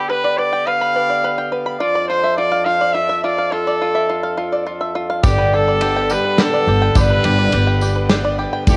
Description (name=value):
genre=indie folk with a building arrangement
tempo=105 BPM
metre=3/4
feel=straight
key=G mixolydian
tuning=A4 = 440 Hz
part: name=bright trumpet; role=melody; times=0.0-8.8 s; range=G4 to F5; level=-21 LUFS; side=equal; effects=cassette tape, tape echo
part: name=hand-pumped harmonium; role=sustained chords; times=0.0-8.8 s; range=F2 to G4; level=-31 LUFS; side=equal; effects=cassette tape, plate reverb
part: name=bluegrass banjo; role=arpeggios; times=0.0-8.7 s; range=F4 to B5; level=-24 LUFS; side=equal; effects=cassette tape, plate reverb
part: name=mellow trombone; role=second line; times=5.2-8.8 s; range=D3 to G3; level=-27 LUFS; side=equal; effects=cassette tape, plate reverb
part: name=picked twelve-string acoustic guitar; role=accompaniment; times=5.2-8.8 s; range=G2 to A4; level=-25 LUFS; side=equal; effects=cassette tape
part: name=upright bass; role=bass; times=5.2-8.8 s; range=F1 to G1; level=-21 LUFS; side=equal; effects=none
part: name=natural country drum kit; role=drums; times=5.2-8.8 s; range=kick drum, ride cymbal, snare drum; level=-22 LUFS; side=equal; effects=cassette tape
part: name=tambourine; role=percussion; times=5.2-8.8 s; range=none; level=-35 LUFS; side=equal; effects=none
room=moderate small room reverb, RT60 0.5 s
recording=home recording on cassette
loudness=-17 LUFS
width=mono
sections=0.0-8.8 A section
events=none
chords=0.0 G; 1.8 Dmadd9/F; 5.2 G